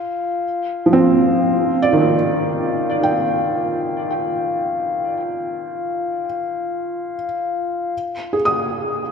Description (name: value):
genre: ambient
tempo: free time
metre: none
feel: none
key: unclear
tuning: A4 = 440 Hz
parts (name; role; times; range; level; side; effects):
- felt-muted upright piano; arpeggios; 0.0-9.1 s; Eb3 to Eb6; -17 LUFS; right 2 dB; tape echo
- glass harmonica; texture; 0.0-7.9 s; F4 to F5; -23 LUFS; left 4 dB; stereo widening
room: wet cathedral reverb, RT60 5.7 s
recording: in a vast, echoing space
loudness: -17 LUFS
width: side -6 dB against mid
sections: 0.0-7.9 A section; 7.9-9.1 B section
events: none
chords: 0.0 Eb; 7.9 N.C.